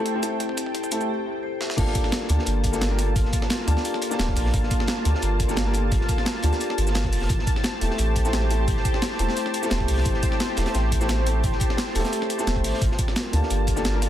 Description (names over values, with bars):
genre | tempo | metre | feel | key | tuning
liquid drum and bass | 174 BPM | 4/4 | straight | G dorian | A4 = 441 Hz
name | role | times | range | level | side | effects
dark baby grand piano | accompaniment | 0.0-14.1 s | A3 to A5 | -29 LUFS | left 1 dB | tape echo
lush unison pad | sustained chords | 0.0-14.1 s | Bb3 to A5 | -31 LUFS | equal | chorus, sidechain pumping
vibraphone with medium mallets | arpeggios | 0.0-14.1 s | E4 to E5 | -33 LUFS | left 5 dB | ping-pong delay
breakbeat sampler-style drum kit | drums | 0.1-14.1 s | crash cymbal, hi-hat, shaker, snare drum | -29 LUFS | equal | overdrive, high-pass filter on hats, high-pass filter on perc, high-pass filter on snare, high-pass filter on cymbals, high-pass filter on room
electronic kick drum | drums | 0.1-13.8 s | none | -25 LUFS | equal | overdrive, high-pass filter on kick, high-pass filter on room
sub bass with octave | bass | 1.8-14.1 s | D1 to D2 | -23 LUFS | equal | tube saturation
crunchy breakbeat drum kit | drums | 1.8-14.1 s | hi-hat, snare drum | -35 LUFS | equal | high-pass filter on hats, high-pass filter on snare, high-pass filter on room
room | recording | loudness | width
small room ambience | dense, heavily limited modern master | -21 LUFS | side -11 dB against mid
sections
0.0-1.8 A section; 1.8-14.1 B section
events
build-up 0.0-1.8; drum fill 0.0-1.1, 1.6; filter sweep on analog synth pad 0.0-1.8; drop 1.8-14.1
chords
0.0 Am7; 1.8 Gm9; 7.3 Am7; 12.8 Gm9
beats
0.06 | 0.40 0.74 1.09 1.44 | 1.78 2.12 2.47 2.81 | 3.16 3.50 3.85 4.19 | 4.54 4.88 5.23 5.57 | 5.92 6.26 6.61 6.95 | 7.30 7.64 7.99 8.33 | 8.68 9.02 9.37 9.71 | 10.06 10.40 10.74 11.09 | 11.44 11.78 12.12 12.47 | 12.81 13.16 13.50 13.85